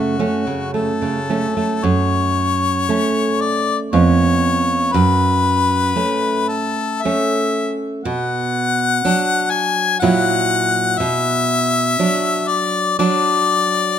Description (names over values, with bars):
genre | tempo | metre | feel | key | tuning
romantic duo for harmonica and classical guitar | 59 BPM | 3/4 | uneven beats, rubato | F# minor | A4 = 440 Hz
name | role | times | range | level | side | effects
bright harmonica | melody | 0.0-14.0 s | F#4 to G#5 | -18 LUFS | left 5 dB | none
nylon-string guitar | accompaniment | 0.0-14.0 s | E#2 to E4 | -18 LUFS | right 3 dB | none
room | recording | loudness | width
light reverb | close, detailed microphones | -15 LUFS | side -9 dB against mid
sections
0.0-1.8 A section; 1.8-14.0 B section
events
none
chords
0.0 F#m; 3.9 C#7/E#; 4.9 F#m; 8.0 Bm; 10.0 F#7/A#; 11.0 Bm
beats
0.74 | 1.84 2.89 3.93 | 4.94 5.95 7.04 | 8.05 9.04 10.01 | 10.99 11.98 12.98